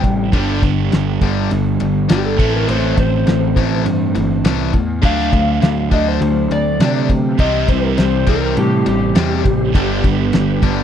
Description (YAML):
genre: classic rock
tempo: 102 BPM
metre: 4/4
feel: straight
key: C lydian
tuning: A4 = 440 Hz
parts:
  - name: electric slide guitar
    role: melody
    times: 0.0-10.6 s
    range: G4 to G5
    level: -21 LUFS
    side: left 2 dB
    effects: slapback echo
  - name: cranked stack guitar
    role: riff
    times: 0.0-10.8 s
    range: G2 to D4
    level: -20 LUFS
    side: left 11 dB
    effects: overdrive
  - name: crunchy overdriven guitar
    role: riff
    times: 0.0-10.8 s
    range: G2 to A4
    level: -20 LUFS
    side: right 13 dB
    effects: none
  - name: fuzz picked electric bass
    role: bass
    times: 0.0-10.8 s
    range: G1 to C3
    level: -19 LUFS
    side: equal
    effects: overdrive
  - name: cloth-damped thuddy drum kit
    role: drums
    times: 0.0-10.8 s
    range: kick drum, ride cymbal, snare drum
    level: -16 LUFS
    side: equal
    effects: none
  - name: tonewheel organ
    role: sustained chords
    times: 7.1-10.8 s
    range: A3 to D5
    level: -30 LUFS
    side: equal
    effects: slow rotary speaker, overdrive, chorus vibrato
room: little or no reverb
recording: dry, close 1970s-style studio recording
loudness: -13 LUFS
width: side -9 dB against mid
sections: 0.0-10.8 A section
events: electric slide guitar solo 0.0-10.8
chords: 0.3 G; 2.4 Am; 5.0 D; 7.4 C; 9.7 G